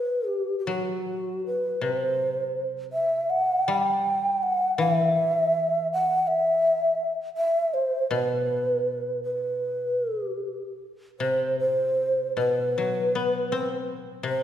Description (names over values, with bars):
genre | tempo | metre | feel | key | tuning
japanese traditional | 80 BPM | 4/4 | uneven beats, rubato | unclear | A4 = 440 Hz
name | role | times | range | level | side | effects
mellow hollow long shakuhachi | melody | 0.0-14.4 s | F#4 to G5 | -24 LUFS | equal | none
koto | accompaniment | 0.7-14.4 s | B2 to C4 | -31 LUFS | left 4 dB | none
room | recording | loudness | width
wet concert hall reverb, RT60 1.9 s | recorded in a church or concert hall | -23 LUFS | side -10 dB against mid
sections
0.0-14.4 A section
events
none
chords
none